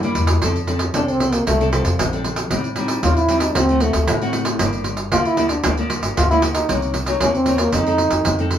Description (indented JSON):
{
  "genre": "samba and choro",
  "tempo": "115 BPM",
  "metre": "4/4",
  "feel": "straight",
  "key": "F major",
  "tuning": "A4 = 441 Hz",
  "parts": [
    { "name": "nylon-string guitar", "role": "accompaniment", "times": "0.0-8.6 s", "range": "G2 to A4", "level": "-23 LUFS", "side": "left 2 dB", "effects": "none" },
    { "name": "upright bass", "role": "bass", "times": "0.0-8.6 s", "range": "G1 to G2", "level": "-23 LUFS", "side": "equal", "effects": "none" },
    { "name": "pandeiro", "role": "percussion", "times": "0.0-8.6 s", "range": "none", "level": "-22 LUFS", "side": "right 2 dB", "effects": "none" },
    { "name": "breathy trombone", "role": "melody", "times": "1.0-8.5 s", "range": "F3 to F4", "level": "-19 LUFS", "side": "right 1 dB", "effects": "none" }
  ],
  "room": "moderate studio ambience, RT60 0.5 s",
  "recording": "band playing live in one room, small room ambience",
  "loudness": "-16 LUFS",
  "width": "side -10 dB against mid",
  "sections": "0.4-8.6 A section",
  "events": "none",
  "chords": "0.4 F6; 2.5 Am7b5; 3.6 D7; 4.6 Gm7; 6.7 Cm7b5; 7.7 F7",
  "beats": "| 0.42 0.95 1.47 1.99 | 2.51 3.04 3.56 4.08 | 4.60 5.12 5.65 6.17 | 6.69 7.21 7.73 8.25"
}